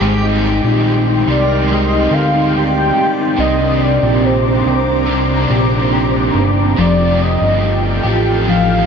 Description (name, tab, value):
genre	dream pop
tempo	71 BPM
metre	4/4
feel	straight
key	unclear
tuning	A4 = 440 Hz
part	biting overdriven guitar	accompaniment	0.0-8.9 s	F2 to G4	-21 LUFS	right 3 dB	tremolo, wide subtle chorus
part	ethereal airy pad	sustained chords	0.7-8.9 s	C4 to D6	-19 LUFS	right 2 dB	ensemble chorus, built-in reverb
part	mellow electric guitar	arpeggios	0.0-8.9 s	C3 to G4	-18 LUFS	left 2 dB	analog chorus, ping-pong delay
part	fat analog bass	bass	0.0-8.8 s	F1 to D2	-17 LUFS	equal	none
part	backwards swelling texture	texture	0.0-8.1 s	Bb4 to G5	-27 LUFS	right 3 dB	built-in reverb, ping-pong delay
part	warm velvety synth lead	melody	1.3-8.9 s	C5 to G5	-19 LUFS	equal	chorus, ping-pong delay
room	light reverb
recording	nothing above 7.5 kHz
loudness	-12 LUFS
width	side -6 dB against mid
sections	0.0-8.9 A section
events	none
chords	0.0 Abmaj7; 3.4 Cm9; 6.8 F9